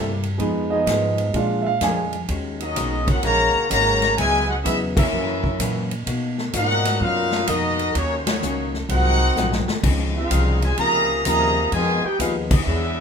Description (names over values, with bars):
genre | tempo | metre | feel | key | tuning
jazz, big band swing | 127 BPM | 4/4 | swing 67% on 8ths | Eb minor | A4 = 440 Hz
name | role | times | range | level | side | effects
archtop guitar, miked and amplified | accompaniment | 0.0-13.0 s | Gb2 to C#5 | -29 LUFS | left 4 dB | none
bright trombone section | sustained chords | 0.0-2.0 s | F3 to A4 | -30 LUFS | left 2 dB | none
upright bass | bass | 0.0-13.0 s | Ab1 to B2 | -24 LUFS | equal | none
swinging big-band drum kit | drums | 0.2-12.6 s | crash cymbal, hi-hat, kick drum, ride cymbal, snare drum | -26 LUFS | equal | none
warm concert grand piano | accompaniment | 0.4-2.2 s | Ab3 to Ab5 | -22 LUFS | right 5 dB | none
bright trumpet section | melody | 2.6-13.0 s | Bb3 to Bb5 | -22 LUFS | left 1 dB | none
dark trombone section | second line | 2.6-13.0 s | A#2 to A#4 | -26 LUFS | right 1 dB | none
room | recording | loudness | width
moderate large studio reverb, RT60 0.9 s | minimal, uncompressed stereo recording | -18 LUFS | side -6 dB against mid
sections
0.0-2.3 A section; 2.3-13.0 B section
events
grand piano solo 0.0-2.3; band accent 4.9, 8.2, 12.4; drum fill 9.4-9.8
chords
0.4 Fm7b5; 1.3 Bb7; 2.3 Ebm11; 4.2 Dbm11; 5.1 Gb7; 6.1 Bmaj7; 8.0 Ebm7; 8.9 Ab13; 9.8 Dbmaj9; 11.7 Fm7b5